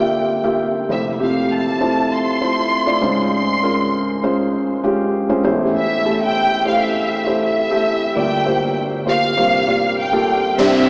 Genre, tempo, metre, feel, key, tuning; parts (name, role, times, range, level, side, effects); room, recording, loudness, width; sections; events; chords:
piano-driven pop; 99 BPM; 4/4; straight; F major; A4 = 439 Hz
warm studio violin section; melody; 0.0-10.9 s; E5 to C6; -19 LUFS; equal
felt-muted upright piano; accompaniment; 0.0-10.9 s; G1 to E5; -16 LUFS; equal
fingerpicked plugged-in steel-string acoustic guitar; riff; 10.6-10.9 s; C4; -17 LUFS; equal
downlifter; sound effects; 10.6-10.9 s; -22 LUFS; equal
wet cathedral reverb, RT60 4.1 s; recorded in a church or concert hall, small speaker sound; -15 LUFS; side -34 dB against mid
0.0-10.6 A section
0.0 Gm7; 0.9 Fmaj7; 3.0 Dbmaj7; 5.4 Am7; 8.2 Gm7; 9.4 C7sus4